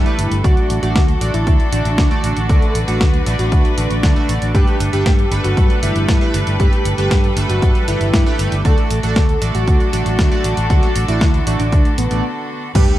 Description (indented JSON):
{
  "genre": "italo disco",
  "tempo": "117 BPM",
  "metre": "4/4",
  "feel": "straight",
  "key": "D major",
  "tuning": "A4 = 440 Hz",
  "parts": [
    { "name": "wide unison lead", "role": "melody", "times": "0.0-13.0 s", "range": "B3 to A4", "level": "-23 LUFS", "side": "equal", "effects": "tape echo" },
    { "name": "clear studio string section", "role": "sustained chords", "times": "0.0-13.0 s", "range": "D3 to B4", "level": "-25 LUFS", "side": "equal", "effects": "none" },
    { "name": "chorused polysynth", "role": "stabs", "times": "0.0-13.0 s", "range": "G3 to D5", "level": "-24 LUFS", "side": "right 4 dB", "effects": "none" },
    { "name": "fingered electric bass", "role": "bass", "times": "0.0-12.8 s", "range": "G1 to G2", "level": "-19 LUFS", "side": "equal", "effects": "none" },
    { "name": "clean 12-bit digital drum machine", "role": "drums", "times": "0.1-13.0 s", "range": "crash cymbal, hi-hat, snare drum", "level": "-24 LUFS", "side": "equal", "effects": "none" },
    { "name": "electronic kick drum", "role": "drums", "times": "0.4-12.9 s", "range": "none", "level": "-15 LUFS", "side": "equal", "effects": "none" },
    { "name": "impact", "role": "sound effects", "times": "12.8-13.0 s", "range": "none", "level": "-21 LUFS", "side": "equal", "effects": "none" }
  ],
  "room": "little or no reverb",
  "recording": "dark, warm production",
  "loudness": "-13 LUFS",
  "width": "side -14 dB against mid",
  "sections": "0.0-12.8 A section",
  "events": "break 12.2-12.8; impact 12.8",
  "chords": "0.4 D; 4.5 Gadd9; 8.6 D"
}